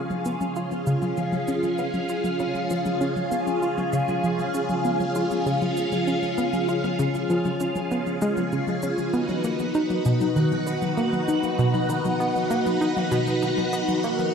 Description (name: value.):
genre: ambient, sequencer-driven space music.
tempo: 98 BPM.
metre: 4/4.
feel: straight.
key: unclear.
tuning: A4 = 440 Hz.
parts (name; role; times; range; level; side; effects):
string machine, full ensemble; sustained chords; 0.0-14.3 s; C#4 to F#5; -24 LUFS; equal; phaser, ensemble chorus.
analog pluck; riff; 0.0-14.2 s; B2 to E#4; -26 LUFS; equal; chorus, ping-pong delay.
electronic toms and shaker; percussion; 0.1-14.3 s; none; -32 LUFS; right 1 dB; ping-pong delay.
room: wet concert hall reverb, RT60 2.4 s.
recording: dark, warm production.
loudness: -22 LUFS.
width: side -6 dB against mid.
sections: 0.0-14.3 A section.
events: filter sweep on synth arpeggio sound 0.0-14.3.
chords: 0.0 C#; 9.1 B.